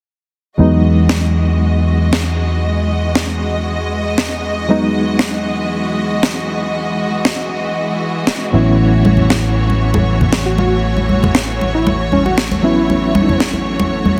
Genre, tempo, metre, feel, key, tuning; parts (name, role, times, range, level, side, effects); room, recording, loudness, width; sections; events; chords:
nu-disco, nu disco; 117 BPM; 4/4; straight; E major; A4 = 440 Hz
bright reed electric piano; accompaniment; 0.6-14.2 s; F#3 to E4; -21 LUFS; equal; fast tremolo
rich studio string section; sustained chords; 0.6-14.2 s; E3 to D#5; -22 LUFS; equal
fingered electric bass; bass; 0.6-14.2 s; A1 to E2; -19 LUFS; equal
snare drum; drums; 1.1-13.5 s; -22 LUFS; equal; small room ambience
congas; percussion; 9.0-14.2 s; -19 LUFS; equal
unison lead; melody; 10.5-13.4 s; C#4 to F#4; -22 LUFS; equal; analog chorus, digital delay
moderate plate reverb, RT60 2.1 s; dense, heavily limited modern master; -15 LUFS; mono
0.6-14.2 A section
0.6 Emaj9; 8.5 A6